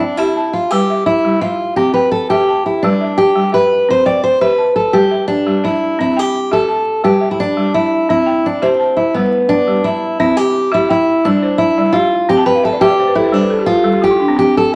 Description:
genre	west african traditional, West African string and xylophone music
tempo	114 BPM (dotted quarters)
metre	12/8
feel	straight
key	C major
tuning	A4 = 438 Hz
part	picked steel-string acoustic guitar	melody	0.0-14.7 s	B3 to D5	-15 LUFS	equal	none
part	balafon	arpeggios	0.0-14.7 s	G3 to A5	-20 LUFS	equal	none
room	moderate large studio reverb, RT60 1.3 s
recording	vinyl crackle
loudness	-14 LUFS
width	mono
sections	0.0-10.2 A section; 10.2-14.8 A section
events	balafon fill 12.4-14.4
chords	0.0 C (rootless); 0.7 G; 1.8 C; 2.8 G; 3.9 C; 4.9 G; 6.0 C; 7.0 G; 8.1 C; 9.1 G; 10.2 C; 11.2 G5; 12.3 C5; 13.3 N.C.

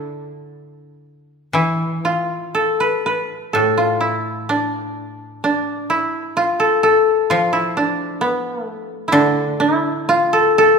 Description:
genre	japanese traditional, Japanese chamber music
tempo	55-66 BPM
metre	4/4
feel	rubato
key	D kumoi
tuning	A4 = 438 Hz
part	koto	melody	0.0-10.8 s	B3 to B4	-16 LUFS	equal	none
part	koto	accompaniment	0.0-10.8 s	A2 to F3	-23 LUFS	equal	none
room	moderate scoring stage reverb, RT60 1.9 s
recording	recorded in a church or concert hall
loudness	-16 LUFS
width	side -5 dB against mid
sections	0.0-1.6 A section; 1.6-10.8 B section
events	none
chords	none

